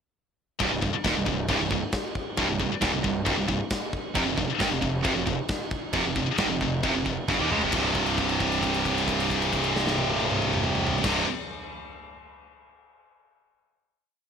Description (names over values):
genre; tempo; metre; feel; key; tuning
heavy metal; 134 BPM; 4/4; straight; C minor; A4 = 441 Hz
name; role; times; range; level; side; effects
heavy high-gain guitar; riff; 0.6-11.3 s; C2 to Bb3; -28 LUFS; left 13 dB; distortion
high-gain distorted guitar; riff; 0.6-11.2 s; C2 to Bb3; -27 LUFS; right 8 dB; distortion
fuzz picked electric bass; bass; 0.6-11.2 s; C1 to Eb2; -32 LUFS; left 1 dB; overdrive
big rock drum kit; drums; 0.6-11.1 s; crash cymbal, kick drum, snare drum, toms; -30 LUFS; left 1 dB; none
room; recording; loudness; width
small room ambience; none; -23 LUFS; side -7 dB against mid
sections
0.6-7.7 riff; 7.7-11.3 final chord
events
drum fill 7.3-7.7; held note 7.7-11.0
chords
0.6 Cm; 4.2 F5; 7.7 C5